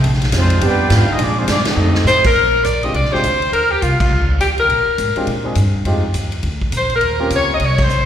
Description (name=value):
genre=jazz, big band swing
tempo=206 BPM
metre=4/4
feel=swing 62% on 8ths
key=Bb mixolydian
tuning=A4 = 442 Hz
part: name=upright bass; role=bass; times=0.0-8.1 s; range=Ab1 to Bb2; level=-18 LUFS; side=equal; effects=none
part: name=swinging big-band drum kit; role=drums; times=0.0-8.0 s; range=crash cymbal, hi-hat, kick drum, ride cymbal, snare drum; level=-21 LUFS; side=equal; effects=none
part: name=clear trombone section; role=second line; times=0.3-2.2 s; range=F3 to G4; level=-20 LUFS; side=right 2 dB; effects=slapback echo
part: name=mellow trumpet section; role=melody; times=0.4-2.2 s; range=Ab3 to G5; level=-20 LUFS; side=right 1 dB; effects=slapback echo
part: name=warm saxophone section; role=melody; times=2.1-8.1 s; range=F4 to Eb5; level=-15 LUFS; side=left 2 dB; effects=slapback echo
part: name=clear upright piano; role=accompaniment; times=2.8-7.6 s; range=Ab3 to Ab4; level=-22 LUFS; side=equal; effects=slapback echo
room=light reverb, studio ambience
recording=live gig heard through the venue's PA, recital hall reverb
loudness=-13 LUFS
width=side -10 dB against mid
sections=0.0-2.4 A section; 2.4-8.1 B section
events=band accent 1.6, 4.0, 7.7; drum fill 1.8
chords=0.0 Bb9; 0.6 G7; 1.2 Bb13; 1.8 F9; 2.4 Bb13; 3.5 Ebsus2; 4.7 Bb13; 5.9 Fm7; 6.4 Bb; 7.0 Eb13